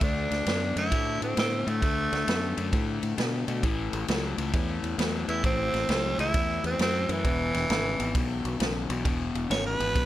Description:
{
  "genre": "electric blues shuffle",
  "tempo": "133 BPM",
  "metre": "4/4",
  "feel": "swing 66% on 8ths",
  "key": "A major",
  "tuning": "A4 = 437 Hz",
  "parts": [
    { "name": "growling tenor saxophone", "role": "melody", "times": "0.0-10.1 s", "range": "E3 to C#5", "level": "-29 LUFS", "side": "right 2 dB", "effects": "none" },
    { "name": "crunchy overdriven guitar", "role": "riff", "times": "0.0-10.1 s", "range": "E2 to B3", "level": "-31 LUFS", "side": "left 5 dB", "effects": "none" },
    { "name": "fingered electric bass", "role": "bass", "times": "0.0-10.1 s", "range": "E1 to B2", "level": "-32 LUFS", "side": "right 1 dB", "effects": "none" },
    { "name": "vintage drum kit", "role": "drums", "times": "0.0-10.1 s", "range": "kick drum, ride cymbal, snare drum", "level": "-30 LUFS", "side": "right 1 dB", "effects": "none" }
  ],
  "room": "studio ambience",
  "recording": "none",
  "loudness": "-25 LUFS",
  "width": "side -14 dB against mid",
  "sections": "0.0-10.1 A section",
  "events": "tenor saxophone solo 0.0-10.1",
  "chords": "0.0 D; 3.6 A; 7.2 E"
}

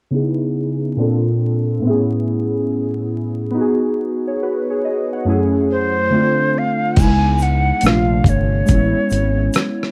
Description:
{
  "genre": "lo-fi hip hop",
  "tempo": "70 BPM",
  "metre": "4/4",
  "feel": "swing 65% on 16ths",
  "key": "C# minor",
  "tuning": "A4 = 440 Hz",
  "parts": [
    { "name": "warbly lo-fi synth keys", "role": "accompaniment", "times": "0.1-9.9 s", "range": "F#2 to F#5", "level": "-20 LUFS", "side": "equal", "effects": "chorus, cassette tape, low-pass filter" },
    { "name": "breathy jazz flute", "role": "melody", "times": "5.7-9.9 s", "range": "B#4 to G#5", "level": "-22 LUFS", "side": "equal", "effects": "low-pass filter" },
    { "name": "fingered electric bass", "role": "bass", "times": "7.0-9.5 s", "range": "G1 to C#2", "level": "-20 LUFS", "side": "equal", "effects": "none" },
    { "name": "dusty soul sampler-style drum kit", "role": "drums", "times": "7.0-9.9 s", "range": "crash cymbal, hi-hat, kick drum, rim click", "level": "-19 LUFS", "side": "equal", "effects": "overdrive" },
    { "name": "egg shaker", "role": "percussion", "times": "7.0-9.8 s", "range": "none", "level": "-40 LUFS", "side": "equal", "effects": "none" }
  ],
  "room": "moderate small room reverb, RT60 0.6 s",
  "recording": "vinyl crackle",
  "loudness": "-17 LUFS",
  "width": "mono",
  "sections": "0.1-7.0 A section; 7.0-9.9 B section",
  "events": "filter sweep on synth keys 0.1-7.0",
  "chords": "0.1 C#m7; 1.0 A#maj7; 1.8 Amaj7; 3.5 G#m7; 5.3 F#m7; 6.1 Dm7; 7.0 C#m7; 7.8 A#maj7; 8.7 Amaj7"
}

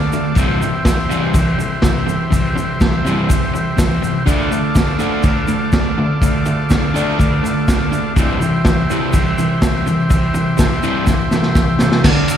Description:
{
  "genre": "garage rock duo or trio",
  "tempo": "123 BPM",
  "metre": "4/4",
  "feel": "straight",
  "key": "unclear",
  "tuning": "A4 = 440 Hz",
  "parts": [
    { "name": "combo organ", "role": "sustained chords", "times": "0.0-12.4 s", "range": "E4 to D5", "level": "-22 LUFS", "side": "equal", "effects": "none" },
    { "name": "crunchy overdriven guitar", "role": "riff", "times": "0.0-12.4 s", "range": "C3 to D4", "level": "-17 LUFS", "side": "equal", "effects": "none" },
    { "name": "egg shaker", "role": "percussion", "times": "0.1-12.4 s", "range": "none", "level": "-35 LUFS", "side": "right 2 dB", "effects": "none" },
    { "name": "vintage drum kit", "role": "drums", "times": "0.4-12.4 s", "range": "crash cymbal, kick drum, ride cymbal, snare drum", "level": "-17 LUFS", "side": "equal", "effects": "none" }
  ],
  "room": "light reverb, studio reverb",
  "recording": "live gig heard through the venue's PA, recital hall reverb",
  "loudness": "-13 LUFS",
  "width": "side -9 dB against mid",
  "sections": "0.0-12.0 A section",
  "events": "drum fill 11.1-12.0",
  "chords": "0.4 C; 4.3 Dm; 8.2 C"
}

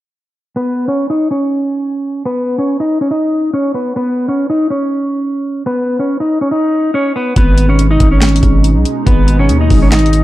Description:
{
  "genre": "hip hop, trap",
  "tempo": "141 BPM",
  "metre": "4/4",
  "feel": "half-time",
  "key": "unclear",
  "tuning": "A4 = 442 Hz",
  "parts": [
    { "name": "clean electric guitar", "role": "melody", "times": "0.6-10.2 s", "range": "B3 to D#5", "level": "-14 LUFS", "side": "equal", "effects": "spring reverb" },
    { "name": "warm analog pad", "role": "sustained chords", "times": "7.4-10.2 s", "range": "B2 to D#4", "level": "-20 LUFS", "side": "equal", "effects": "chorus" },
    { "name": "growling 808-style bass", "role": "bass", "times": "7.4-10.2 s", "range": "G#1 to D#2", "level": "-11 LUFS", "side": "equal", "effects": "none" },
    { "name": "trap drum kit", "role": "drums", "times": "7.4-10.2 s", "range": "handclaps, hi-hat, kick drum, snare drum", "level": "-12 LUFS", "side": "equal", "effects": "none" }
  ],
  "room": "little or no reverb",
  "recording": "dark, warm production, low-pass filter",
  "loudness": "-11 LUFS",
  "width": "side -15 dB against mid",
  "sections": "0.6-7.4 A section; 7.4-10.2 B section",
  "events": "filter sweep 0.6-7.4",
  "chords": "0.6 Badd9; 7.4 G#m"
}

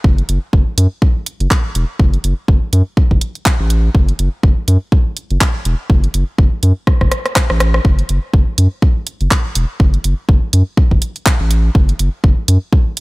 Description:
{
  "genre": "minimal techno",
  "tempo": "123 BPM",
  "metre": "4/4",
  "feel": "swing 57% on 16ths",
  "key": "F# minor",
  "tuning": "A4 = 441 Hz",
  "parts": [
    { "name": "saturated sub bass", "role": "bass", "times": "0.0-12.6 s", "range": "E1 to F#2", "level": "-13 LUFS", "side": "equal", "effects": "sidechain pumping" },
    { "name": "electronic kick drum", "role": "drums", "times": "0.0-12.8 s", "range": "none", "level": "-12 LUFS", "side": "equal", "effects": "none" },
    { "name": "house drum kit", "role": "drums", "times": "0.2-13.0 s", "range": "handclaps, hi-hat, rim click", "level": "-18 LUFS", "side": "right 1 dB", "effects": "none" }
  ],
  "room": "little or no reverb",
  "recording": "none",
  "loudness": "-12 LUFS",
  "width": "side -23 dB against mid",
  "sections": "0.0-13.0 A section",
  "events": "drum fill 6.9-7.8",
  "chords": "none"
}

